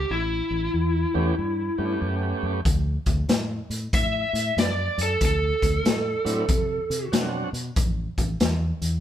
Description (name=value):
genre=electric blues shuffle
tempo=94 BPM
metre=4/4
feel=swing 65% on 8ths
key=unclear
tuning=A4 = 440 Hz
part: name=lead guitar through a small cranked amp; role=melody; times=0.0-7.1 s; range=E4 to E5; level=-25 LUFS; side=equal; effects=overdrive
part: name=fingered electric bass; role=bass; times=0.0-9.0 s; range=A1 to C3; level=-27 LUFS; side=equal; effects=none
part: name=tonewheel organ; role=accompaniment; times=1.1-7.5 s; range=F#3 to G4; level=-30 LUFS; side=right 4 dB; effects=slow rotary speaker, overdrive
part: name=raw garage drum kit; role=drums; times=2.7-8.9 s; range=hi-hat, kick drum, snare drum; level=-25 LUFS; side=left 1 dB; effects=none
room=light reverb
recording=band playing live in one room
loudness=-22 LUFS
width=side -10 dB against mid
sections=0.0-9.0 A section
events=none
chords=0.0 A9; 2.7 D7; 7.8 A5